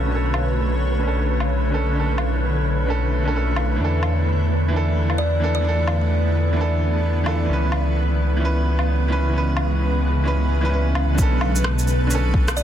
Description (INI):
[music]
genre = future garage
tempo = 130 BPM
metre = 4/4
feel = swing 63% on 16ths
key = B dorian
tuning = A4 = 440 Hz
[part]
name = bright upright piano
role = accompaniment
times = 0.0-12.6 s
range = D3 to B4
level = -25 LUFS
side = right 2 dB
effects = sidechain pumping, low-pass filter, tape echo
[part]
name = granular cloud pad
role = sustained chords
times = 0.0-12.6 s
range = B2 to C#5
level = -26 LUFS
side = equal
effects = built-in reverb, sidechain pumping
[part]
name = dark detuned saw bass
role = bass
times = 0.0-12.6 s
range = B1 to E2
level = -20 LUFS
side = equal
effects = sidechain pumping
[part]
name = wind-like tuned noise texture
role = texture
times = 0.0-11.2 s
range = B4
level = -33 LUFS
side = right 2 dB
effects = built-in reverb
[part]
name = electronic woodblock, shaker and rim click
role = drums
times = 0.3-12.6 s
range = none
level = -27 LUFS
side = left 1 dB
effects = soft clipping on snare
[part]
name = kalimba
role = melody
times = 5.2-5.8, 12.6 s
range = D5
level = -29 LUFS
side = right 1 dB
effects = ping-pong delay
[part]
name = electronic kick drum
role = drums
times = 11.2-12.5 s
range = none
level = -19 LUFS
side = equal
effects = none
[sound]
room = light reverb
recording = dense, heavily limited modern master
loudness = -18 LUFS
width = side -10 dB against mid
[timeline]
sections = 0.0-11.2 A section; 11.2-12.6 B section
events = none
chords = 0.0 Bm9; 3.8 E7sus4; 7.5 C#m7; 11.2 Bm9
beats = | 0.11 0.57 1.03 1.49 | 1.95 2.41 2.88 3.34 | 3.80 4.26 4.72 5.18 | 5.64 6.11 6.57 7.03 | 7.49 7.95 8.41 8.88 | 9.34 9.80 10.26 10.72 | 11.18 11.64 12.11 12.57